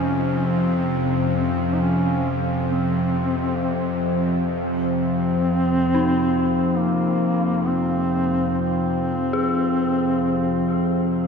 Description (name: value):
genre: dark ambient drone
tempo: 66 BPM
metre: 4/4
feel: straight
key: F minor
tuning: A4 = 440 Hz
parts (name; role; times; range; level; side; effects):
- dark duduk; melody; 0.0-11.3 s; Bb3 to Eb4; -23 LUFS; equal; diffuse ambient delay
- deep dark ambient pad; sustained chords; 0.0-11.3 s; F3 to F5; -24 LUFS; left 1 dB; chorus, built-in reverb
- bowed-like drone; drone; 0.0-11.3 s; F2 to C3; -24 LUFS; equal; built-in reverb
- dark detuned synth bell; arpeggios; 5.9-11.3 s; Eb4 to Ab4; -29 LUFS; left 2 dB; chorus, diffuse ambient delay
room: wet cathedral reverb, RT60 5.0 s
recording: none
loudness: -19 LUFS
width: side -6 dB against mid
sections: 0.0-11.3 A section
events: none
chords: 0.0 F5